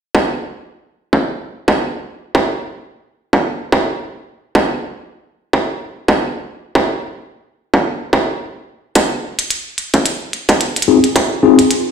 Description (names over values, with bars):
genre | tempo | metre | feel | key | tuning
glitch hop | 109 BPM | 4/4 | swing 57% on 16ths | F minor | A4 = 440 Hz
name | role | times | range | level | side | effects
electronic kick drum | drums | 0.1-11.3 s | none | -14 LUFS | right 1 dB | distortion, high-pass filter on kick
electronic hi-hat | drums | 9.0-11.8 s | none | -19 LUFS | equal | none
mellow tine electric piano | stabs | 10.9-11.6 s | C4 to Ab4 | -10 LUFS | left 5 dB | medium stereo tremolo, sidechain pumping
room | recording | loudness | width
moderate lush hall reverb, RT60 2.7 s | played on a big sound system in a bare room, stone room reverb | -14 LUFS | side -6 dB against mid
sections
0.1-11.9 A section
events
none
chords
0.1 N.C.; 9.0 Fm7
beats
| 0.15 0.70 1.25 1.80 | 2.35 2.90 3.45 4.00 | 4.55 5.10 5.65 6.20 | 6.75 7.30 7.85 8.40 | 8.95 9.50 10.05 10.61 | 11.15 11.71